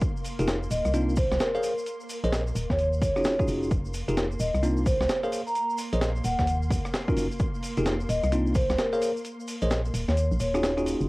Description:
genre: UK garage, two-step garage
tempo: 130 BPM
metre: 4/4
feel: swing 63% on 16ths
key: F minor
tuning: A4 = 440 Hz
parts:
  - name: soft string machine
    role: sustained chords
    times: 0.0-11.1 s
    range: Bb3 to C6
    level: -38 LUFS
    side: equal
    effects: ensemble chorus, sidechain pumping, cassette tape
  - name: breakbeat sampler-style drum kit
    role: drums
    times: 0.0-11.0 s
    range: hi-hat, rim click, snare drum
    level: -33 LUFS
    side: equal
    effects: low-pass filter on snare, low-pass filter on hats
  - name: electronic kick drum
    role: drums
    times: 0.0-8.7 s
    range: none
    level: -28 LUFS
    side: equal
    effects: overdrive
  - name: tube shaker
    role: percussion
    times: 0.0-11.1 s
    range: none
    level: -44 LUFS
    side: left 1 dB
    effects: none
  - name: bell-like tine electric piano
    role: stabs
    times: 0.4-11.1 s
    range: Bb3 to F5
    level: -29 LUFS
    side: equal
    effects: cassette tape
  - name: organ-like FM bass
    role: bass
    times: 0.4-11.1 s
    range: Eb1 to Eb2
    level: -28 LUFS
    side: equal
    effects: tube saturation, sidechain pumping
  - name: vibraphone with soft mallets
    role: melody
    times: 0.7-10.8 s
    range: Bb4 to Bb5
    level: -28 LUFS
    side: equal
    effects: cassette tape
room: light reverb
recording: home recording on cassette, vinyl crackle, low-pass filter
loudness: -24 LUFS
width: side -22 dB against mid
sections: 0.0-11.1 A section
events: kick drops out 9.2-11.1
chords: 0.0 Fm11; 0.9 Cm11; 1.6 Bbm11; 2.6 Ebm11; 3.7 Fm11; 4.6 Cm11; 5.3 Bbm11; 6.2 Ebm9; 7.4 Fm11; 8.3 Cm11; 9.0 Bbm11; 9.9 Ebm11

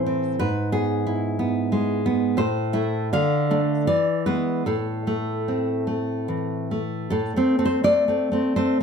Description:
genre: romantic piece for solo classical guitar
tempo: 72-92 BPM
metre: 3/4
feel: rubato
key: A minor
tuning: A4 = 441 Hz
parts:
  - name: nylon-string guitar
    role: solo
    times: 0.0-8.8 s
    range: G#2 to F5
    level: -20 LUFS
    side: equal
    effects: slapback echo
room: light reverb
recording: close, detailed microphones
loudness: -21 LUFS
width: side -6 dB against mid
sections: 0.0-7.1 A section; 7.1-8.8 A section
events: none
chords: 0.4 E/G#; 2.4 Am; 3.1 Dm; 3.9 E7; 4.7 Am

